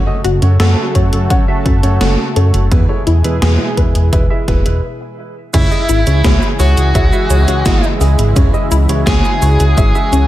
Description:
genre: synthwave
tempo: 85 BPM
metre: 4/4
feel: straight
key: C# minor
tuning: A4 = 440 Hz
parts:
  - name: lush unison pad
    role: sustained chords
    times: 0.0-10.3 s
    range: B2 to A4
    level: -21 LUFS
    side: right 1 dB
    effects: chorus, vintage 12-bit sampler grit, sidechain pumping
  - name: analog pluck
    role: arpeggios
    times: 0.0-10.3 s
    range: B3 to F#5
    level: -23 LUFS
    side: left 5 dB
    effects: chorus, digital delay
  - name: chorused synth bass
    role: bass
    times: 0.0-10.3 s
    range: E1 to F#2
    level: -12 LUFS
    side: equal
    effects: none
  - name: warm baby grand piano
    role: stabs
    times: 0.1-10.3 s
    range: G#3 to E5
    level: -22 LUFS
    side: right 2 dB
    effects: digital delay
  - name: gated 80s digital drum machine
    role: drums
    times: 0.2-10.3 s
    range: cabasa, crash cymbal, hi-hat, snare drum, toms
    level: -20 LUFS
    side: right 1 dB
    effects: gated reverb, gated reverb snare, overdrive
  - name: electronic kick drum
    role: drums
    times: 0.9-9.9 s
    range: none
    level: -15 LUFS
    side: equal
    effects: none
  - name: smooth overdriven lead guitar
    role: melody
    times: 5.5-10.3 s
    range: E4 to G#4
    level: -19 LUFS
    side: equal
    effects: digital delay
  - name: soft synth bell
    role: second line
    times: 5.5-10.3 s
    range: E4 to G#4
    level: -28 LUFS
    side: left 3 dB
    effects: none
room: light reverb, digital ambience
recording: none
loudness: -10 LUFS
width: side -14 dB against mid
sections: 0.0-5.5 A section; 5.5-10.3 B section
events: stop 4.8-5.5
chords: 0.0 F#m; 2.7 E; 5.5 C#m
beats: 0.60 1.30 2.01 | 2.71 3.42 4.13 4.83 | 5.54 6.24 6.95 7.66 | 8.36 9.07 9.77

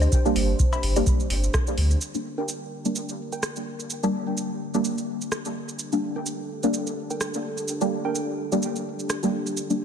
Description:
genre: dub techno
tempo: 127 BPM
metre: 4/4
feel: swing 56% on 16ths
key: G minor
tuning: A4 = 440 Hz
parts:
  - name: dark analog pad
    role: sustained chords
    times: 0.0-9.8 s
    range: D4 to C5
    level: -33 LUFS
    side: equal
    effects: chorus, sidechain pumping
  - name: warm sub bass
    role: bass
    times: 0.0-2.0 s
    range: G1 to D2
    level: -22 LUFS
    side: equal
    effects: sidechain pumping
  - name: booming analog drum machine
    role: drums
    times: 0.0-9.8 s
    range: hi-hat, rim click, shaker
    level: -31 LUFS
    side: right 2 dB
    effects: studio reverb
  - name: woodblock and cowbell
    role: percussion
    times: 0.0-1.0 s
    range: none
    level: -36 LUFS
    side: left 7 dB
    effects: sidechain pumping on perc, studio reverb, dub echo
  - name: electronic kick drum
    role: drums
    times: 0.1-1.6 s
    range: none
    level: -23 LUFS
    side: equal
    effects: studio reverb
  - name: deep mellow chord stab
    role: stabs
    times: 0.3-9.8 s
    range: G3 to D4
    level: -27 LUFS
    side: equal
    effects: chorus, phaser, sidechain pumping, dub echo
  - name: filtered dub chord stab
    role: riff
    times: 2.4-8.3 s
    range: D4 to G5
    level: -36 LUFS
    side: right 3 dB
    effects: chorus, sidechain pumping, dub echo
room: moderate lush hall reverb, RT60 2.3 s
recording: none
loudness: -24 LUFS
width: side -8 dB against mid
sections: 0.0-2.0 A section; 2.0-9.8 B section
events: filter sweep on synth stab 0.0-2.0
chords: 0.0 Gm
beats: | 0.12 0.59 1.07 1.54 | 2.01 2.48 2.96 3.43 | 3.90 4.37 4.85 5.32 | 5.79 6.26 6.74 7.21 | 7.68 8.15 8.62 9.10 | 9.57

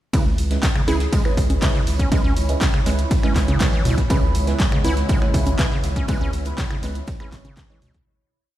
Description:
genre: acid house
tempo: 121 BPM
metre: 4/4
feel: straight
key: C# minor pentatonic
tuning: A4 = 440 Hz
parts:
  - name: acid bass, square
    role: riff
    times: 0.1-8.0 s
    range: C#2 to E4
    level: -27 LUFS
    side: equal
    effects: tube saturation, sidechain pumping, ping-pong delay
  - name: deep mellow chord stab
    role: stabs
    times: 0.1-7.9 s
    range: G#3 to C#5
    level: -29 LUFS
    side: right 4 dB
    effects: chorus, phaser, ping-pong delay
  - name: electronic kick drum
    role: drums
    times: 0.1-8.0 s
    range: none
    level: -20 LUFS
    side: equal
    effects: overdrive
  - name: punchy analog drum machine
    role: drums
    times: 0.1-8.0 s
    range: congas, finger snaps, handclaps, hi-hat, ride cymbal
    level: -28 LUFS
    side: equal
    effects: overdrive
  - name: unplugged drum kit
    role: drums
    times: 0.1-7.9 s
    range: hi-hat, snare drum, tambourine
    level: -39 LUFS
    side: equal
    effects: sidechain pumping on hats, high-pass filter on hats, high-pass filter on snare, sidechain pumping on perc, high-pass filter on perc, high-pass filter on room
  - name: ethereal airy pad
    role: texture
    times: 1.0-8.1 s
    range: E4 to B5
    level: -32 LUFS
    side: right 2 dB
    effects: ensemble chorus, built-in reverb, sidechain pumping
  - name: saturated sub bass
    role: bass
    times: 0.3-8.0 s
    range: G#1 to C#2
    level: -22 LUFS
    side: equal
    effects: sidechain pumping
  - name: glassy wavetable pluck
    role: melody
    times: 0.9-1.4 s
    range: G#4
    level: -32 LUFS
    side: equal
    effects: chorus, ping-pong delay
  - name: lush unison pad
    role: sustained chords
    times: 4.1-8.0 s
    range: C#3 to E4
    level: -30 LUFS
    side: right 1 dB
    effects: chorus, phaser, sidechain pumping
room: digital ambience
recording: played on a big sound system in a bare room, stone room reverb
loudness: -17 LUFS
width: side -13 dB against mid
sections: 0.1-8.1 drop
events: drop 0.1-8.1; fade-out 5.4-8.1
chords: 0.1 C#m7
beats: | 0.13 0.63 1.13 1.62 | 2.12 2.61 3.11 3.60 | 4.10 4.60 5.09 5.59 | 6.08 6.58 7.08 7.57

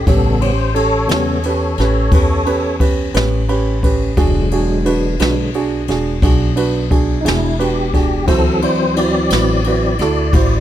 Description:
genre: slow blues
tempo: 58 BPM (dotted quarters)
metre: 12/8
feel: straight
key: A mixolydian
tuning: A4 = 439 Hz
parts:
  - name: tonewheel organ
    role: sustained chords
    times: 0.0-10.6 s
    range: C#3 to D5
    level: -18 LUFS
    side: left 1 dB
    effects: slow rotary speaker, chorus vibrato
  - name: upright bass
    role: bass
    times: 0.0-10.6 s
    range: E1 to E2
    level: -18 LUFS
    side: left 1 dB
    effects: none
  - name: warm grand piano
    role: accompaniment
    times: 0.1-10.6 s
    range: C#4 to B5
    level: -19 LUFS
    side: right 4 dB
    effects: none
  - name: jazz brush drum kit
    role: drums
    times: 0.1-10.5 s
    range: kick drum, ride cymbal, snare drum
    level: -19 LUFS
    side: left 1 dB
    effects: none
room: small room ambience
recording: none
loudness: -13 LUFS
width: side -12 dB against mid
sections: 0.0-10.6 A section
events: tonewheel organ solo 0.0-10.6; grand piano fill 3.1-4.2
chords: 0.0 A7; 4.2 E7; 8.3 D7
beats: | 0.07 1.09 2.12 3.15 | 4.17 5.20 6.23 7.26 | 8.28 9.31 10.34

